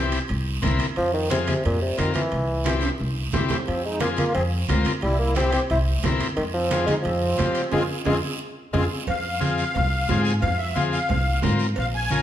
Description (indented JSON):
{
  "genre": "latin, cumbia",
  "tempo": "178 BPM",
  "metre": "4/4",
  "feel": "straight",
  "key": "F harmonic minor",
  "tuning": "A4 = 441 Hz",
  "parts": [
    { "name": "mellow bassoon", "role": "melody", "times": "0.0-8.8 s", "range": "Bb2 to E4", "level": "-26 LUFS", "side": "equal", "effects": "none" },
    { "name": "combo organ", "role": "accompaniment", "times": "0.0-12.2 s", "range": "C4 to Bb4", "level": "-28 LUFS", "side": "left 5 dB", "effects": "none" },
    { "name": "upright bass", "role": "bass", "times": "0.0-12.2 s", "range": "Bb1 to Ab2", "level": "-25 LUFS", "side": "equal", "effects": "none" },
    { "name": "guiro", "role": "percussion", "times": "0.1-12.2 s", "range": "none", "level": "-36 LUFS", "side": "right 6 dB", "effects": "none" },
    { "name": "timbales and cowbell", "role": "percussion", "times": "0.1-11.9 s", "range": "none", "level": "-34 LUFS", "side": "right 5 dB", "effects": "none" },
    { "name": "congas", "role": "percussion", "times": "0.3-12.2 s", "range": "none", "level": "-29 LUFS", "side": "right 2 dB", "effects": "none" },
    { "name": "musette accordion", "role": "second line", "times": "3.7-12.2 s", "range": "Ab3 to Ab5", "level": "-28 LUFS", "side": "left 1 dB", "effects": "none" }
  ],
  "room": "wet large studio reverb, RT60 1.4 s",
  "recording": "none",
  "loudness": "-21 LUFS",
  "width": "side -11 dB against mid",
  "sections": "0.0-9.1 A section; 9.1-12.2 B section",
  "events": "drum fill 2.8-3.7, 8.6-9.1; band accent 7.7-9.1; accordion solo 9.1-12.2",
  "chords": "0.0 C7; 1.0 Fm; 2.3 C; 3.7 Fm; 5.0 C7; 6.4 Fm"
}